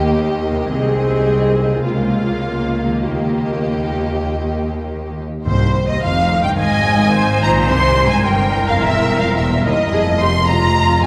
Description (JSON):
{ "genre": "classical", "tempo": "96-109 BPM", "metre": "4/4", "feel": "rubato", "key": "Ab major", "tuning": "A4 = 439 Hz", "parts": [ { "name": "warm symphonic violin section", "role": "melody", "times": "0.0-11.1 s", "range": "C5 to C6", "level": "-24 LUFS", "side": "equal", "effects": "none" }, { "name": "clear studio violin section", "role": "second line", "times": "0.0-11.1 s", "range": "F4 to C6", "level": "-25 LUFS", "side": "equal", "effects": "none" }, { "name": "clear symphonic viola section", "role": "accompaniment", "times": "0.0-11.1 s", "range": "Bb3 to Eb5", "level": "-25 LUFS", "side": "equal", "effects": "none" }, { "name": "dark French horn section", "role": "sustained chords", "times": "0.0-5.2 s", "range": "Ab3 to Ab4", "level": "-25 LUFS", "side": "equal", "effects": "none" }, { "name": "concert harp", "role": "arpeggios", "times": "0.0-11.1 s", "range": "F2 to Bb4", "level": "-27 LUFS", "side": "equal", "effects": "none" }, { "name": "rich symphonic cello section", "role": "bass", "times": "0.0-11.1 s", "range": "C2 to Db3", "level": "-23 LUFS", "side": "equal", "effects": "none" }, { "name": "rich symphonic double bass section", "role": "bass", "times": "0.0-11.1 s", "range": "E1 to Eb2", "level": "-24 LUFS", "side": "equal", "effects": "none" }, { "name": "timpani", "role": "percussion", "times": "5.5-6.3 s", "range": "Ab2", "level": "-27 LUFS", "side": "equal", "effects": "none" } ], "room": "wet cathedral reverb, RT60 5.9 s", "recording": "recorded in a church or concert hall", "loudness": "-17 LUFS", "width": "mono", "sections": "0.0-5.5 A section; 5.5-11.1 B section", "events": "none", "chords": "0.0 Eb; 0.7 Ab/C; 1.8 Bbm/Db; 3.0 Eb; 5.5 Ab; 7.7 C7; 9.9 F5", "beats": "0.14 | 0.71 1.27 1.84 2.43 | 3.04 3.65 4.26 4.87 | 5.46 6.03 6.58 7.14 | 7.70 8.26 8.82 9.38 | 9.93 10.49 11.04" }